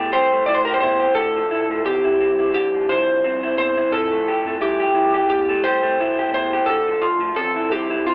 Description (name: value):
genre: indie pop, bedroom pop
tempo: 87 BPM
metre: 4/4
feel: swing 55% on 16ths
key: unclear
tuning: A4 = 440 Hz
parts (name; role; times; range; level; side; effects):
- electric slide guitar; melody; 0.0-8.1 s; F4 to D5; -18 LUFS; equal; lush chorus
- electric guitar through a small old amp; accompaniment; 0.0-8.1 s; D3 to G4; -21 LUFS; equal; wide subtle chorus, warbly pitch drift, cassette tape
- round analog bass; bass; 0.0-8.1 s; A1 to F2; -38 LUFS; equal; none
room: wet spring reverb, RT60 1.3 s, digital ambience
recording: home recording on cassette, telephone sound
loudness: -16 LUFS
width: side -32 dB against mid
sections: 0.0-8.1 A section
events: none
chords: 0.0 Fmaj9; 1.2 Dm9; 3.9 Fmaj9; 6.7 Dm9